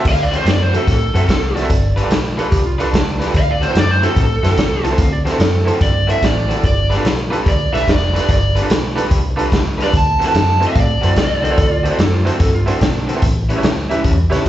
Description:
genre	electric blues shuffle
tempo	146 BPM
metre	4/4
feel	swing 67% on 8ths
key	D mixolydian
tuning	A4 = 441 Hz
part	bright upright piano	accompaniment	0.0-14.4 s	D4 to E5	-23 LUFS	right 4 dB	slapback echo
part	overdriven semi-hollow guitar	riff	0.0-14.5 s	A2 to B4	-22 LUFS	left 3 dB	slapback echo
part	lead guitar through a small cranked amp	melody	0.1-12.0 s	A4 to A5	-19 LUFS	right 2 dB	overdrive, slapback echo
part	vintage muted fingered electric bass	bass	0.1-14.5 s	F1 to B2	-19 LUFS	equal	none
part	raw garage drum kit	drums	0.1-14.5 s	crash cymbal, hi-hat, kick drum, snare drum	-17 LUFS	equal	none
part	electric slide guitar	second line	1.6-5.7, 11.4-13.1 s	D4 to A5	-24 LUFS	right 3 dB	slapback echo
room	little or no reverb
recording	live gig heard through the venue's PA, club reverb, nothing above 7.9 kHz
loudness	-13 LUFS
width	side -13 dB against mid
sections	0.0-14.5 A section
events	none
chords	0.0 D7; 1.7 G7; 3.3 D7; 6.6 G7; 9.9 D7; 13.2 A7

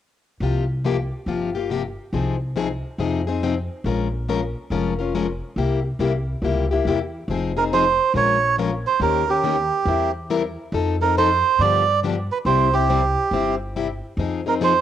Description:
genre	acoustic string swing (jazz manouche)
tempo	139 BPM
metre	4/4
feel	swing 64% on 8ths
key	F minor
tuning	A4 = 441 Hz
part	picked plugged-in steel-string acoustic guitar	accompaniment	0.4-14.7 s	C3 to Bb4	-23 LUFS	left 6 dB	cassette tape
part	upright bass	bass	0.4-14.8 s	F1 to G2	-25 LUFS	equal	none
part	melodica	melody	7.6-14.8 s	G4 to D5	-19 LUFS	right 6 dB	cassette tape
room	moderate spring reverb, RT60 1.7 s, small room reverb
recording	home recording on cassette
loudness	-19 LUFS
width	side -10 dB against mid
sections	0.4-7.3 A section; 7.3-14.8 B section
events	none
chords	0.4 C7sus4; 2.1 Fm7/C; 3.8 Bbm7; 5.6 C7; 7.3 Fm7; 8.1 Bbm7; 9.0 Eb7; 9.9 C7/E; 10.7 F7; 11.6 G7; 12.5 C; 14.2 Fm7

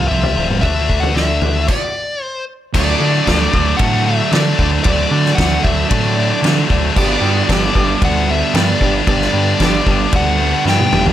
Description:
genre	quiet-loud alternative rock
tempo	114 BPM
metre	4/4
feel	straight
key	unclear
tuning	A4 = 441 Hz
part	dark smooth lead guitar	melody	0.0-11.0 s	D5 to G5	-20 LUFS	left 2 dB	overdrive, slapback echo
part	twelve-string electric guitar	arpeggios	0.0-1.7 s	F2 to F#4	-24 LUFS	right 5 dB	tremolo
part	heavy high-gain guitar	riff	0.0-11.1 s	F2 to D4	-20 LUFS	left 8 dB	distortion
part	gritty driven synth bass	bass	0.0-11.1 s	D1 to D3	-18 LUFS	equal	none
part	loose indie drum kit	drums	0.2-11.1 s	crash cymbal, kick drum, ride cymbal, snare drum, toms	-18 LUFS	equal	none
part	thick fuzz guitar	riff	2.7-11.1 s	G2 to D4	-20 LUFS	right 10 dB	distortion
room	small room reverb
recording	none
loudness	-12 LUFS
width	side -11 dB against mid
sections	0.0-2.7 A section; 2.7-11.1 B section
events	stop 1.7-2.7; drum fill 10.7-11.1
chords	0.0 F; 0.6 D; 7.0 G

